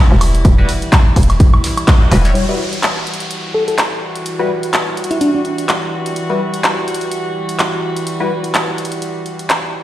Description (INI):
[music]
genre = bass house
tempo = 126 BPM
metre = 4/4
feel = swing 57% on 16ths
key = E minor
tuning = A4 = 437 Hz
[part]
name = dark chamber string section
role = sustained chords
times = 0.0-9.8 s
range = E3 to F#4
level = -22 LUFS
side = equal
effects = vintage 12-bit sampler grit, sidechain pumping, low-pass filter
[part]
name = hollow knocking FM bass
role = bass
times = 0.1-2.3 s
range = E1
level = -13 LUFS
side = equal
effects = tube saturation, sidechain pumping
[part]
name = big-room dance drum kit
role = drums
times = 0.2-9.6 s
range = handclaps, hi-hat, woodblock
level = -19 LUFS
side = equal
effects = studio reverb
[part]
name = damped 70s drum kit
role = drums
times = 0.2-2.3 s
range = hi-hat, snare drum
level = -30 LUFS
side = right 2 dB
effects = none
[part]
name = electronic kick drum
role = drums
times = 0.4-2.0 s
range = none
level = -10 LUFS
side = equal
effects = studio reverb
[part]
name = band-passed chord stab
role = stabs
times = 0.6-8.3 s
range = G3 to C#5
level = -21 LUFS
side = left 2 dB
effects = phaser, sidechain pumping, digital delay
[part]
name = downlifter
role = sound effects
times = 2.4-6.2 s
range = none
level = -27 LUFS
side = equal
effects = none
[part]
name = bell-like FM electric piano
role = melody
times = 3.5-5.4 s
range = D4 to A4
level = -18 LUFS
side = equal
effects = chorus, digital delay
[sound]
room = light reverb, small room ambience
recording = played on a big sound system in a bare room, stone room reverb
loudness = -13 LUFS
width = side -14 dB against mid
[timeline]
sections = 0.0-2.4 A section; 2.4-9.8 B section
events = band accent 1.9; filter sweep on string section 2.4-9.8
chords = 0.0 Emadd9